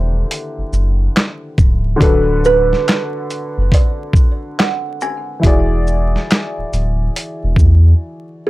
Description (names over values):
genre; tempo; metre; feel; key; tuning
lo-fi hip hop; 70 BPM; 4/4; swing 65% on 16ths; unclear; A4 = 440 Hz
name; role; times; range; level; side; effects
warm upright piano; accompaniment; 0.0-8.5 s; D3 to D5; -22 LUFS; left 1 dB; cassette tape, low-pass filter
soft dub sub bass; bass; 0.0-7.9 s; C#1 to E2; -14 LUFS; equal; tube saturation
dusty soul sampler-style drum kit; drums; 0.3-7.8 s; handclaps, hi-hat, kick drum, shaker, snare drum; -13 LUFS; equal; none
kalimba; melody; 2.0-8.5 s; G#4 to G#5; -18 LUFS; right 3 dB; low-pass filter
room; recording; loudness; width
little or no reverb; dry, gritty hardware recording, transformer saturation, vinyl crackle; -13 LUFS; side -18 dB against mid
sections
0.0-8.5 A section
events
break 8.0-8.5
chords
0.0 D9sus4; 2.0 Bm7/D; 5.4 E9